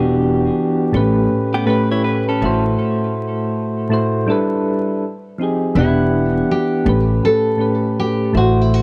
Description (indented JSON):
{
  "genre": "hip hop",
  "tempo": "81 BPM",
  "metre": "4/4",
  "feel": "swing 65% on 16ths",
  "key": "unclear",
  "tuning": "A4 = 440 Hz",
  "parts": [
    { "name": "soft electric-piano-like synth keys", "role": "accompaniment", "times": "0.0-8.8 s", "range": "A2 to F#5", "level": "-19 LUFS", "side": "equal", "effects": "chorus, tremolo, low-pass filter" },
    { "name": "upright bass", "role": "bass", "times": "0.0-8.8 s", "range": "E1 to A1", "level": "-21 LUFS", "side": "equal", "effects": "none" },
    { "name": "direct-recorded clean electric guitar", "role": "second line", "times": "1.5-2.6 s", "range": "B3 to C#5", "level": "-26 LUFS", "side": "equal", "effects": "spring reverb, low-pass filter, tape echo" },
    { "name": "nylon-string guitar", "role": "melody", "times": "5.8-8.8 s", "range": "E4 to A4", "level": "-22 LUFS", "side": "equal", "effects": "low-pass filter, tape echo" }
  ],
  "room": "light reverb, small room ambience",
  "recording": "dry, gritty hardware recording, vinyl crackle",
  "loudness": "-17 LUFS",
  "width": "mono",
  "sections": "0.0-8.8 A section",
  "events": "break 2.8-5.7",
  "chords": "0.0 Em7; 0.9 A7; 2.4 Am6; 4.3 G6; 5.0 Fm7; 5.7 Em7; 6.9 A7",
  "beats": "0.56 1.30 2.04 | 2.78 3.52 4.26 5.01 | 5.75 6.49 7.23 7.97 | 8.71"
}